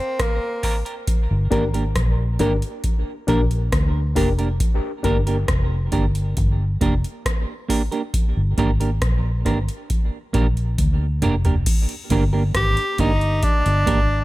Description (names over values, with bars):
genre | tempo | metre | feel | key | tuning
dub reggae | 68 BPM | 4/4 | straight | G phrygian | A4 = 440 Hz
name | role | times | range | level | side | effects
clear tenor saxophone | melody | 0.0-0.8, 12.6-14.2 s | Bb3 to G4 | -22 LUFS | equal | tape echo
booming analog drum machine | drums | 0.2-14.1 s | crash cymbal, hi-hat, kick drum, rim click, toms | -21 LUFS | equal | none
semi-hollow electric guitar | accompaniment | 0.6-14.0 s | Bb3 to Bb4 | -26 LUFS | right 4 dB | high-pass filter, tape echo
reed electric piano | stabs | 0.6-5.2 s | D4 to Bb4 | -28 LUFS | left 4 dB | overdrive, high-pass filter, tape echo
vintage muted fingered electric bass | bass | 1.3-14.2 s | F1 to D2 | -20 LUFS | equal | none
room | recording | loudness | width
digital ambience | none | -18 LUFS | side -18 dB against mid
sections
0.0-11.7 A section; 11.7-14.2 B section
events
drum fill 10.8-11.7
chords
0.0 Gm